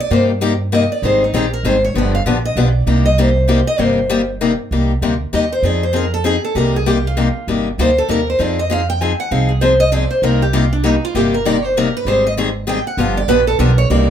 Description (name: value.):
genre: acoustic string swing (jazz manouche).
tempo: 196 BPM.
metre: 3/4.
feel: swing 59% on 8ths.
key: C minor.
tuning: A4 = 440 Hz.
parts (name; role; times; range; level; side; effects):
picked acoustic archtop guitar; melody; 0.0-14.1 s; D4 to Ab5; -18 LUFS; right 1 dB; plate reverb.
picked steel-string acoustic guitar; accompaniment; 0.1-14.1 s; C3 to Ab4; -18 LUFS; left 4 dB; none.
upright bass; bass; 0.1-14.1 s; G1 to G2; -18 LUFS; right 2 dB; none.
room: moderate club reverb, RT60 0.6 s.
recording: none.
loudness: -13 LUFS.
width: side -9 dB against mid.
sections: 0.0-4.7 A section; 4.7-14.1 A section.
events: steel-string acoustic guitar solo 0.0-4.7, 4.7-14.1.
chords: 0.0 Cm7; 1.0 Abmaj7; 1.9 G7#9; 2.9 Cm7; 5.6 Fm7; 6.6 Cm7; 8.4 Fm7; 10.2 Cm7; 12.1 Abmaj7; 13.0 G7#9.